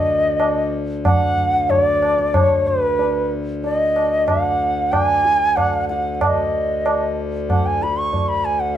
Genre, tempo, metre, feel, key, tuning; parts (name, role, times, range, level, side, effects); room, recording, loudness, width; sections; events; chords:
indian classical, Hindustani; 93 BPM; 5/4; straight; D raga marwa; A4 = 438 Hz
bright reedy bansuri; melody; 0.0-8.8 s; B4-20c to C#6; -18 LUFS; equal
hand-pumped harmonium; drone; 0.0-8.8 s; D2 to D3; -25 LUFS; left 3 dB
tabla; percussion; 0.4-8.4 s; -22 LUFS; right 2 dB
moderate stone room reverb, RT60 1.1 s; band playing live in one room; -16 LUFS; side -10 dB against mid
0.0-8.8 A section